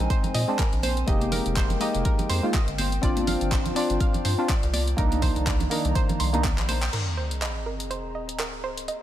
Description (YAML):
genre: deep house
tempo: 123 BPM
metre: 4/4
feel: swing 56% on 16ths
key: unclear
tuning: A4 = 441 Hz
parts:
  - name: warbly tape-like pad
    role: sustained chords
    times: 0.0-9.0 s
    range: Eb3 to Bb5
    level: -34 LUFS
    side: equal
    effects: chorus, built-in reverb, sidechain pumping
  - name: percussive organ stab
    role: stabs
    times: 0.0-6.5 s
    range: Ab3 to G4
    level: -28 LUFS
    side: equal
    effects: chorus, sidechain pumping, ping-pong delay
  - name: rubbery square bass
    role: bass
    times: 0.0-6.9 s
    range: F1 to Bb2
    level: -27 LUFS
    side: equal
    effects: none
  - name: deep house drum kit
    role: drums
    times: 0.0-9.0 s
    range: crash cymbal, handclaps, hi-hat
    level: -32 LUFS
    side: left 1 dB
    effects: none
  - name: analog pluck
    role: arpeggios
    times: 0.1-9.0 s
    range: Bb4 to C6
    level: -33 LUFS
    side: right 3 dB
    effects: chorus, sidechain pumping, ping-pong delay
  - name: electronic kick drum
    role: drums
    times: 0.1-6.6 s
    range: none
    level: -24 LUFS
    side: equal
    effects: none
  - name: congas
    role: percussion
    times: 0.2-6.8 s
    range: none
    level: -34 LUFS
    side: right 2 dB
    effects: none
  - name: sub drop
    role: sound effects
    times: 6.9-8.9 s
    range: none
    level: -32 LUFS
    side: equal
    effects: none
room: light reverb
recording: none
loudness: -22 LUFS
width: side -12 dB against mid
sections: 0.0-6.9 A section; 6.9-9.0 B section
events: drum fill 6.6-6.9; band accent 6.8; impact 6.9-8.9; filter sweep on synth arpeggio sound 6.9-9.0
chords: 0.0 Bb9sus4; 1.1 Fm11; 2.8 G7sus4; 4.7 Cm9; 6.9 Bb9sus4